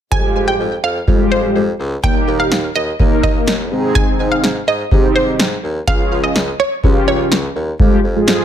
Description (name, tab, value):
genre	synth-pop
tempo	125 BPM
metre	4/4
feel	straight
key	F minor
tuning	A4 = 440 Hz
part	analog pluck	second line	0.1-7.4 s	C5 to Ab5	-20 LUFS	right 2 dB	chorus, tape echo
part	mellow synth brass	accompaniment	0.1-8.4 s	Ab3 to Bb4	-17 LUFS	equal	chorus
part	clear bassoon	bass	0.1-8.4 s	Db2 to Ab2	-22 LUFS	equal	none
part	electro analog drum machine	drums	0.1-8.4 s	kick drum, snare drum	-16 LUFS	equal	none
room	light reverb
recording	dense, heavily limited modern master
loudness	-13 LUFS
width	side -10 dB against mid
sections	0.1-7.8 A section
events	none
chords	0.1 Fmadd9; 2.0 Eb; 3.7 Ab; 5.9 Db; 7.8 Fmadd9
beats	| 0.12 0.60 1.08 1.56 | 2.04 2.52 3.00 3.48 | 3.96 4.44 4.92 5.40 | 5.88 6.36 6.84 7.32 | 7.80 8.28